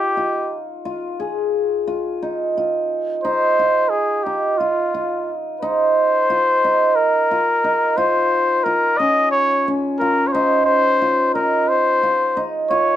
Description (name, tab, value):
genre	progressive instrumental, progressive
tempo	177 BPM (eighths)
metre	7/8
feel	straight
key	unclear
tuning	A4 = 440 Hz
part	mellow trumpet	melody	0.0-13.0 s	F4 to Eb5	-17 LUFS	left 2 dB	none
part	cimbalom	arpeggios	0.0-13.0 s	Db4 to Ab4	-20 LUFS	right 2 dB	none
room	light reverb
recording	none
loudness	-16 LUFS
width	side -11 dB against mid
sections	0.0-5.6 A section; 5.6-13.0 B section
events	none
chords	0.0 F7sus2; 0.9 Ebsus2; 8.0 Dbmaj13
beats	0.18 0.52 | 0.86 1.20 1.54 1.89 2.23 2.57 2.91 | 3.25 3.59 3.93 4.27 4.61 4.95 5.28 | 5.62 5.96 6.30 6.64 6.98 7.32 7.65 | 7.99 8.33 8.67 9.01 9.34 9.68 10.02 | 10.36 10.69 11.03 11.37 11.70 12.04 12.38 | 12.72